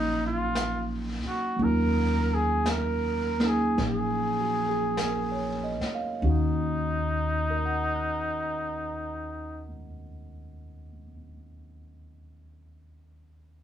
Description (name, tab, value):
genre	jazz ballad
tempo	47-60 BPM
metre	4/4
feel	swing 66% on 8ths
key	Eb minor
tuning	A4 = 441 Hz
part	mellow trumpet	melody	0.0-9.7 s	Eb4 to Bb4	-29 LUFS	equal	none
part	tine electric piano	accompaniment	0.0-13.6 s	Eb2 to Gb6	-30 LUFS	right 2 dB	none
part	upright bass	bass	0.0-9.6 s	Bb1 to Eb2	-31 LUFS	left 2 dB	none
part	vintage brush drum kit	drums	0.6-6.8 s	brushed snare drum, hi-hat, snare drum	-36 LUFS	left 2 dB	none
room	moderate studio reverb, RT60 0.8 s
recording	band playing live in one room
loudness	-25 LUFS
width	side -10 dB against mid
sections	0.0-6.2 A section; 6.2-11.3 B section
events	slowing down 0.0-6.2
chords	0.0 Ebm9; 6.2 Ebm7